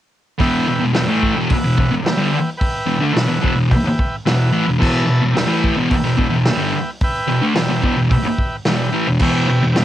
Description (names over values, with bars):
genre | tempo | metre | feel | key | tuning
garage rock duo or trio | 109 BPM | 4/4 | straight | E minor | A4 = 440 Hz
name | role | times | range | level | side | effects
combo organ | sustained chords | 0.4-9.8 s | B4 to A5 | -24 LUFS | right 1 dB | cassette tape
thick fuzz guitar | riff | 0.4-9.8 s | E2 to A3 | -16 LUFS | equal | distortion, cassette tape
vintage drum kit | drums | 0.4-9.8 s | crash cymbal, hi-hat, kick drum, snare drum | -21 LUFS | equal | cassette tape
room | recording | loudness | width
light reverb | home recording on cassette | -14 LUFS | side -12 dB against mid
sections
0.4-9.8 A section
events
none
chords
0.4 Em